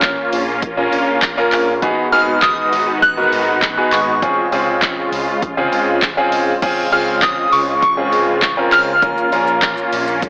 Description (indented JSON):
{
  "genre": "dance-pop",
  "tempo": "100 BPM",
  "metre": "4/4",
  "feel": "straight",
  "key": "Db major",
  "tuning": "A4 = 442 Hz",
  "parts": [
    { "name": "soft synth bell", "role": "melody", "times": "0.0-9.9 s", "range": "Db6 to Gb6", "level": "-19 LUFS", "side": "equal", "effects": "chorus, phaser, tape echo" },
    { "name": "clear concert grand piano", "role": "accompaniment", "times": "0.0-10.1 s", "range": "Bb3 to Db5", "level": "-20 LUFS", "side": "equal", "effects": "sidechain pumping" },
    { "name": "filtered supersaw swell", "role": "sustained chords", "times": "0.0-10.3 s", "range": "Db3 to Gb4", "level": "-23 LUFS", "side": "equal", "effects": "sidechain pumping" },
    { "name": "chorused synth bass", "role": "bass", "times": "0.0-10.2 s", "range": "Ab1 to Db2", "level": "-30 LUFS", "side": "equal", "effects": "sidechain pumping" },
    { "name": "house drum kit", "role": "drums", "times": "0.0-10.3 s", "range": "crash cymbal, handclaps, hi-hat, kick drum, shaker", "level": "-23 LUFS", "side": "equal", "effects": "none" }
  ],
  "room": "light reverb",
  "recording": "blown-out, overdriven recording, overdrive, AM radio sound",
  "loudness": "-16 LUFS",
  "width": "mono",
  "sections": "0.0-6.6 A section; 6.6-10.3 A section",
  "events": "none",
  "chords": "0.0 Bbm; 1.8 Abm7; 4.2 Dbmaj7; 9.0 Bbm"
}